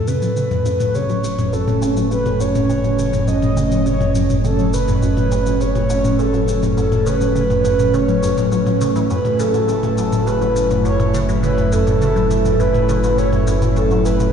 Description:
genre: ambient, sequencer-driven space music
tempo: 103 BPM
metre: 4/4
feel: straight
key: F# minor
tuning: A4 = 440 Hz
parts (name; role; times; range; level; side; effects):
- breathy flute-like synth lead; melody; 0.0-14.3 s; A4 to D#5; -20 LUFS; right 1 dB; lush chorus, cassette tape, ping-pong delay
- sweeping resonant pad; sustained chords; 0.0-14.3 s; F#3 to E4; -22 LUFS; right 2 dB; chorus
- round analog bass; bass; 0.0-14.3 s; F#1; -23 LUFS; equal; tube saturation
- bubbling stepped-filter texture; texture; 0.0-14.3 s; C#4 to C#5; -34 LUFS; right 2 dB; chorus, built-in reverb
- resonant blip pluck; riff; 0.1-14.3 s; F#2 to F#3; -22 LUFS; equal; phaser, ping-pong delay
- electronic shaker and toms; percussion; 0.1-14.3 s; none; -22 LUFS; left 2 dB; overdrive
room: moderate huge ambient reverb, RT60 8.9 s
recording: played on a big sound system in a bare room, cassette tape, large studio reverb, nothing above 10.5 kHz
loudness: -15 LUFS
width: side -7 dB against mid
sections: 0.0-14.3 A section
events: fade-in on synth texture 0.0-14.3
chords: 0.0 F#m

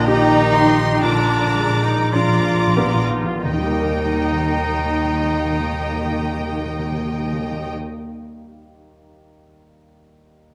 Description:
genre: classical, romantic movement for piano and orchestra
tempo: 43-66 BPM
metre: 4/4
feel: rubato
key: Eb major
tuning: A4 = 437 Hz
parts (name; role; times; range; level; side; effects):
- clear chamber violin section; melody; 0.0-7.7 s; G5 to D6; -32 LUFS; equal; none
- warm grand piano; melody; 0.0-10.5 s; Eb2 to Bb4; -26 LUFS; equal; none
- clear clarinet; second line; 0.0-7.7 s; D4 to G4; -24 LUFS; equal; none
- rich chamber violin section; second line; 0.0-7.7 s; D5 to Bb5; -28 LUFS; equal; none
- rich chamber viola section; accompaniment; 0.0-7.7 s; D4 to F4; -29 LUFS; equal; none
- clear chamber double bass section; bass; 0.0-7.7 s; Bb1 to Eb2; -29 LUFS; equal; none
- warm chamber cello section; bass; 0.0-7.7 s; D3 to F3; -30 LUFS; equal; none
- timpani; percussion; 1.0-7.7 s; Bb2 to Eb3; -28 LUFS; equal; none
room: wet recital hall reverb, RT60 1.4 s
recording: none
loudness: -19 LUFS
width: mono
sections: 0.0-3.4 A section; 3.4-8.3 B section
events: slowing down 0.0-3.4; timpani fill 1.0-3.4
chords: 0.0 Eb/Bb; 1.0 Bb7b9; 3.4 Eb

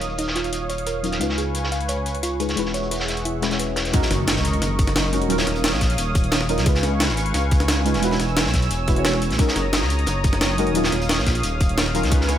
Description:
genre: liquid drum and bass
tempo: 176 BPM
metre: 4/4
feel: straight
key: F# major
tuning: A4 = 440 Hz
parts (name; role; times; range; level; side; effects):
- deep mellow chord stab; accompaniment; 0.0-12.4 s; F#3 to C#5; -26 LUFS; equal; chorus, digital delay
- warm analog pad; sustained chords; 0.0-12.4 s; G#4 to E6; -28 LUFS; equal; chorus, tremolo
- dark detuned saw bass; bass; 0.0-12.4 s; D#1 to C#2; -24 LUFS; equal; tube saturation
- breakbeat sampler-style drum kit; drums; 0.0-12.4 s; hi-hat, snare drum; -26 LUFS; equal; studio ambience
- crunchy breakbeat drum kit; drums; 0.0-12.4 s; hi-hat, snare drum; -28 LUFS; equal; high-pass filter on hats, low-pass filter on hats, studio ambience, high-pass filter on snare, low-pass filter on snare, high-pass filter on room, low-pass filter on room
- thumb-piano-like synth pluck; arpeggios; 0.2-3.9 s; D#4 to E#5; -30 LUFS; right 3 dB; chorus, vintage 12-bit sampler grit, tape echo
- electronic kick drum; drums; 3.9-12.2 s; none; -20 LUFS; equal; studio ambience
- impact; sound effects; 3.9-5.3 s; none; -30 LUFS; equal; none
room: light reverb, digital ambience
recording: none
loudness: -18 LUFS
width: side -10 dB against mid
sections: 0.0-3.9 A section; 3.9-12.4 B section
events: filter sweep on synth stab 0.0-3.9; drop 3.9-12.4; impact 3.9-5.3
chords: 0.0 D#m9; 1.2 C#7; 2.6 E69; 3.9 F#6; 5.3 D#m9; 6.7 C#7; 8.0 E69; 9.4 F#6; 10.8 D#m9

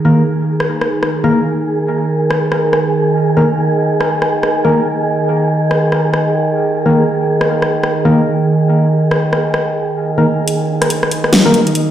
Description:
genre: deep dubstep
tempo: 141 BPM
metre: 4/4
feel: swing 60% on 16ths, half-time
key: unclear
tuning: A4 = 440 Hz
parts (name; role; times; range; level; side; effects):
- overtone-sweeping drone; sustained chords; 0.0-11.9 s; Eb3; -16 LUFS; right 2 dB; chorus, built-in reverb
- percussive organ stab; stabs; 0.0-11.6 s; Eb3 to Bb4; -16 LUFS; left 2 dB; chorus, dub echo
- wind-like tuned noise texture; texture; 0.0-11.9 s; Ab4 to Eb5; -19 LUFS; right 2 dB; built-in reverb
- dubstep drum kit; drums; 0.6-11.9 s; hi-hat, rim click, snare drum; -16 LUFS; left 1 dB; none
room: wet echo chamber reverb, RT60 1.3 s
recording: played on a big sound system in a bare room, large studio reverb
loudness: -12 LUFS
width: side -11 dB against mid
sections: 0.0-10.5 A section; 10.5-11.9 B section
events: build-up 10.5-11.9; filter sweep on synth stab 10.5-11.9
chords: 0.0 Eb5

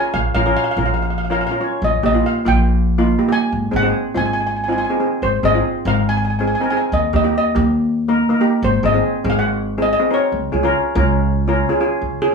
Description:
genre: calypso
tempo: 142 BPM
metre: 4/4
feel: straight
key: Db major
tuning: A4 = 440 Hz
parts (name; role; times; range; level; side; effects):
- steel pan; melody; 0.0-12.3 s; Ab4 to Ab5; -20 LUFS; equal; none
- steel pan; accompaniment; 0.0-12.3 s; Bb3 to Db5; -18 LUFS; equal; none
- upright bass; bass; 0.1-12.2 s; Ab1 to Eb2; -20 LUFS; equal; none
room: wet studio reverb, RT60 0.7 s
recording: band playing live in one room, studio reverb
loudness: -15 LUFS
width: side -5 dB against mid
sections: 0.0-12.0 A section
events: none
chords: 0.1 Bbm; 1.8 Eb/Bb; 3.5 Ab; 6.9 Eb; 8.6 Ab7; 10.3 Db

